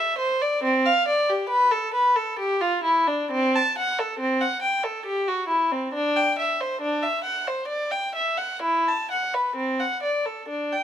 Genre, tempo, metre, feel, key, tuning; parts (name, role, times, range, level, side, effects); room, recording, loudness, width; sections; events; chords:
classical, baroque-style suite movement for unaccompanied violin; 68 BPM; 3/4; uneven beats, rubato; C major; A4 = 441 Hz
warm violin; solo; 0.0-10.8 s; C4 to A5; -21 LUFS; equal
moderate stone room reverb, RT60 1.2 s; minimal, uncompressed stereo recording; -21 LUFS; side -10 dB against mid
0.0-10.8 A section